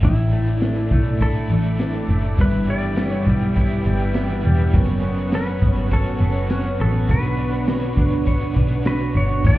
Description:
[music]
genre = dream pop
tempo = 102 BPM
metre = 4/4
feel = straight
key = B minor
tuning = A4 = 440 Hz
[part]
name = clean lap steel guitar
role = melody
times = 0.0-9.6 s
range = E4 to D5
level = -29 LUFS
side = left 1 dB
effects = digital delay
[part]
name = biting overdriven guitar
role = accompaniment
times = 0.0-9.6 s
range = F#2 to C#5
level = -32 LUFS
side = right 3 dB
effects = tremolo, analog chorus
[part]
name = string machine, cellos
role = sustained chords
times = 0.0-9.6 s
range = D4 to D6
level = -27 LUFS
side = right 2 dB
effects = ensemble chorus
[part]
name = semi-hollow electric guitar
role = arpeggios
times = 0.0-9.6 s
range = F#2 to C#5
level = -23 LUFS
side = left 1 dB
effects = wide subtle chorus, digital delay
[part]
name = picked electric bass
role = bass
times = 0.0-9.6 s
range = E1 to D2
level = -21 LUFS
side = equal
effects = none
[part]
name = vintage drum kit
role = drums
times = 0.0-9.6 s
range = crash cymbal, hi-hat, kick drum, snare drum, tambourine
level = -22 LUFS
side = equal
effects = none
[sound]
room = studio reverb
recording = heard muffled through a wall, club reverb, EQ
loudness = -17 LUFS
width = side -16 dB against mid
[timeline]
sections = 0.0-9.4 A section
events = none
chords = 0.0 Asus4; 2.4 G6; 4.7 F#sus4; 7.1 Bmadd9

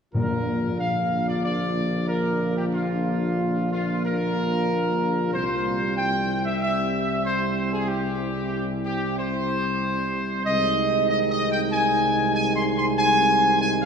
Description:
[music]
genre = classical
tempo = 94 BPM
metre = 4/4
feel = straight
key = Bb mixolydian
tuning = A4 = 442 Hz
[part]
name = mellow French horn section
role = sustained chords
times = 0.1-13.9 s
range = C4 to F4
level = -30 LUFS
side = left 4 dB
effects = none
[part]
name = warm trombone section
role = sustained chords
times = 0.1-13.9 s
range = D3 to Bb3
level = -31 LUFS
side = right 2 dB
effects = none
[part]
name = mellow tuba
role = bass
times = 0.1-13.9 s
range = Bb1 to C2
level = -27 LUFS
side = right 2 dB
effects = none
[part]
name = timpani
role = percussion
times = 0.1-1.1 s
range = Bb2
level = -30 LUFS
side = left 2 dB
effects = none
[part]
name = bright trumpet section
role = melody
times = 0.2-13.9 s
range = F4 to C6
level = -24 LUFS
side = equal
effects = none
[sound]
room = wet church reverb, RT60 3.8 s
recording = recorded in a church or concert hall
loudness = -21 LUFS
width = side -6 dB against mid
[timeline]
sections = 0.1-13.9 A section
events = none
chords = 0.1 Bb; 5.3 C; 10.5 Ab/C

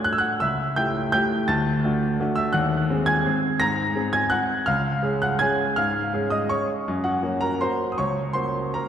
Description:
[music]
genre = classical, piano waltz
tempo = 167 BPM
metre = 3/4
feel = uneven beats, rubato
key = Db major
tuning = A4 = 440 Hz
[part]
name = clear grand piano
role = solo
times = 0.0-8.9 s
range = C#2 to Bb6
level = -21 LUFS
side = equal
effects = none
[sound]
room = wet church reverb, RT60 3.1 s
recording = dark, warm production, faint mains hum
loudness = -21 LUFS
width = side -9 dB against mid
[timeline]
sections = 0.0-8.9 A section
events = none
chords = 0.4 A7/C#; 1.5 D; 2.5 Ab7/Eb; 4.7 Db; 6.9 Gb

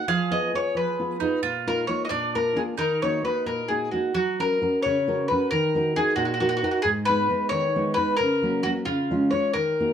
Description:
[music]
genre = italian folk, Italian serenade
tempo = 88 BPM (dotted quarters)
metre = 6/8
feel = rubato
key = Eb minor, F# major from 4.1 s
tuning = A4 = 442 Hz
[part]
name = bowl-back mandolin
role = melody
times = 0.0-9.9 s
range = E#4 to F5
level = -24 LUFS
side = left 2 dB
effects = plate reverb
[part]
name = bowl-back mandolin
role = second line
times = 0.0-3.9 s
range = D4 to Ab4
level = -31 LUFS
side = right 7 dB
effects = none
[part]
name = nylon-string guitar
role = accompaniment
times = 0.0-9.9 s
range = G#2 to A#4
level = -26 LUFS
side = right 1 dB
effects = none
[sound]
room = wet studio reverb, RT60 0.6 s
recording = dark, warm production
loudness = -22 LUFS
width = side -8 dB against mid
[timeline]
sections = 0.0-4.1 A section; 4.1-9.9 B section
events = none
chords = 0.1 Fdim; 1.4 Bbsus4; 2.1 Bb; 2.8 Ebm; 4.1 F#; 5.5 D#m; 6.8 G#m; 8.2 F#/C#; 8.9 C#

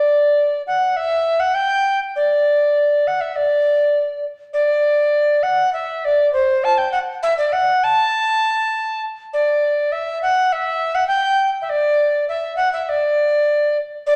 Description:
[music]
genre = medieval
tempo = 101 BPM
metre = 2/4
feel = straight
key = D mixolydian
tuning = A4 = 440 Hz
[part]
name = bright reedy tenor recorder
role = solo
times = 0.0-14.2 s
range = C5 to A5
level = -18 LUFS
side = equal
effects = none
[sound]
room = wet large studio reverb, RT60 1.5 s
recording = none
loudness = -18 LUFS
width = mono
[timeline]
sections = 0.0-4.5 A section; 4.5-14.1 A section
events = none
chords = none

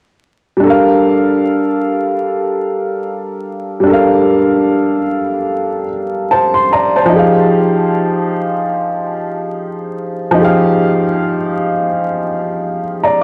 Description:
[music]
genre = hip hop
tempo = 74 BPM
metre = 4/4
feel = swing 57% on 16ths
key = G phrygian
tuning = A4 = 440 Hz
[part]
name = warm upright piano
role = solo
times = 0.6-13.2 s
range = F3 to C6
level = -14 LUFS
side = equal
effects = cassette tape, tape echo
[sound]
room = moderate spring reverb, RT60 2.0 s, small room reverb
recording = home recording on cassette, vinyl crackle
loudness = -14 LUFS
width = mono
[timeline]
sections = 0.6-13.2 A section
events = none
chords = 0.6 Gm9; 7.1 Fm9

